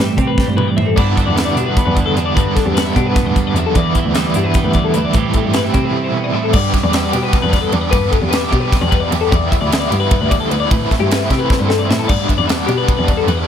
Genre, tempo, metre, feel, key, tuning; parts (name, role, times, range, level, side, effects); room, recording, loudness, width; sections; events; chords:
math rock and midwest emo; 302 BPM (eighths); 7/8; straight; G major; A4 = 440 Hz
twelve-string electric guitar; accompaniment; 0.0-7.9 s; E2 to G4; -19 LUFS; right 6 dB; harmonic tremolo
twelve-string electric guitar; arpeggios; 0.0-13.5 s; G4 to E5; -20 LUFS; left 10 dB; spring reverb
rich cello; bass; 0.0-13.4 s; D2 to C3; -20 LUFS; equal
crisp fusion drum kit; drums; 0.0-13.4 s; crash cymbal, hi-hat, kick drum, ride cymbal, snare drum, toms; -18 LUFS; equal
biting overdriven guitar; riff; 1.0-13.5 s; G2 to G4; -20 LUFS; right 1 dB; tremolo
little or no reverb; -13 LUFS; side -9 dB against mid
0.0-6.5 A section; 6.5-13.5 B section
drum fill 0.4-1.0, 11.5-12.1
0.0 Am7; 1.0 G6; 3.8 Em7; 5.2 Am7; 6.5 G6; 9.3 Em7; 10.7 Am7; 12.1 G6